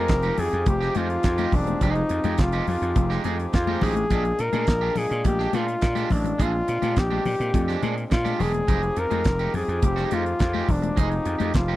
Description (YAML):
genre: disco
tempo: 105 BPM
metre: 4/4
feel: straight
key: F dorian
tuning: A4 = 440 Hz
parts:
  - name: warm flugelhorn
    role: melody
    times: 0.0-11.8 s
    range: D4 to Bb4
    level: -26 LUFS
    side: left 1 dB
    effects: none
  - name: electric guitar at the edge of break-up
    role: accompaniment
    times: 0.0-11.8 s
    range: Ab3 to Ab4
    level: -32 LUFS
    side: right 9 dB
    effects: none
  - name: hand-pumped harmonium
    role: sustained chords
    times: 0.0-11.8 s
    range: F3 to Ab4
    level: -33 LUFS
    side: equal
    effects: none
  - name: gritty slap bass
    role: bass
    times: 0.0-11.8 s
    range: E1 to Bb2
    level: -26 LUFS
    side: equal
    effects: overdrive
  - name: damped 70s drum kit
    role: drums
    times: 0.1-11.7 s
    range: handclaps, hi-hat, kick drum, snare drum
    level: -24 LUFS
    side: right 1 dB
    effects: none
  - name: congas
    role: percussion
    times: 0.4-11.7 s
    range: none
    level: -31 LUFS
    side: left 8 dB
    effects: none
room: little or no reverb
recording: dry, close 1970s-style studio recording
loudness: -21 LUFS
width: side -15 dB against mid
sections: 0.0-11.8 A section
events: none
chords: 0.0 Fm9; 4.1 Bb13; 8.7 Fm9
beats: 0.09 0.67 1.24 | 1.81 2.38 2.96 3.53 | 4.10 4.67 5.25 5.82 | 6.39 6.97 7.54 8.11 | 8.68 9.26 9.83 10.40 | 10.97 11.55